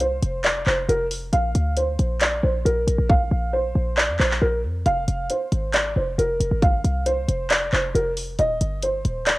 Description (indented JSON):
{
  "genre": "hip hop, trap",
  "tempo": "136 BPM",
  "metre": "4/4",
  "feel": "half-time",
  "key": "F dorian",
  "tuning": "A4 = 441 Hz",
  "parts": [
    { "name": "felt-muted upright piano", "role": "melody", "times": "0.0-9.4 s", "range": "Bb4 to F5", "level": "-23 LUFS", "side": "right 1 dB", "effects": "low-pass filter, cassette tape" },
    { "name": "short 808-style bass", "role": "bass", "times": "0.0-9.4 s", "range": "Eb1 to F2", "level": "-24 LUFS", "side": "equal", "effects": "none" },
    { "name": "trap drum kit", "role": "drums", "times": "0.0-9.4 s", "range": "handclaps, hi-hat, kick drum", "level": "-22 LUFS", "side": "equal", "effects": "cassette tape" }
  ],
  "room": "little or no reverb",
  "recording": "home recording on cassette",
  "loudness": "-19 LUFS",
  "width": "side -19 dB against mid",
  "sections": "0.0-9.4 A section",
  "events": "hi-hats muted 3.1-4.9",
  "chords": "0.0 F5; 1.3 Bbsus2; 4.9 Fm; 8.4 Eb",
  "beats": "0.01 0.45 0.89 | 1.33 1.77 2.21 2.65 | 3.09 3.54 3.98 4.42 | 4.86 5.30 5.74 6.18 | 6.62 7.07 7.51 7.95 | 8.39 8.83 9.27"
}